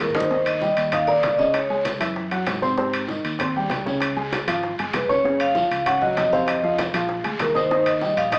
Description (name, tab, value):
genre	Afro-Cuban jazz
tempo	194 BPM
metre	4/4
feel	straight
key	unclear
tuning	A4 = 439 Hz
part	vibraphone with medium mallets	melody	0.0-1.8, 5.0-8.4 s	Bb4 to Gb5	-20 LUFS	equal	none
part	warm upright piano	accompaniment	0.0-8.4 s	C3 to Eb6	-24 LUFS	equal	none
part	fingered electric bass	bass	0.0-8.4 s	Gb1 to Ab2	-33 LUFS	equal	none
part	guiro	percussion	0.0-8.4 s	none	-36 LUFS	equal	none
part	bongos	percussion	0.1-8.4 s	none	-32 LUFS	equal	none
part	congas	percussion	0.1-8.4 s	none	-35 LUFS	equal	none
part	timbales	percussion	0.5-8.4 s	none	-28 LUFS	equal	none
room	wet large studio reverb, RT60 0.9 s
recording	band playing live in one room, small speaker sound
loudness	-19 LUFS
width	side -39 dB against mid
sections	0.3-8.4 A section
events	drum fill 0.0-0.3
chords	0.3 Eb; 1.5 Dbm; 2.2 Gbsus2; 2.8 Abmaj7; 4.0 Db; 5.2 Gb5; 6.5 F5; 7.1 Bb7; 7.7 Eb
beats	0.00 | 0.31 0.62 0.93 1.24 | 1.54 1.85 2.16 2.47 | 2.78 3.09 3.40 3.71 | 4.01 4.32 4.63 4.94 | 5.25 5.55 5.86 6.17 | 6.48 6.79 7.09 7.40 | 7.71 8.02 8.33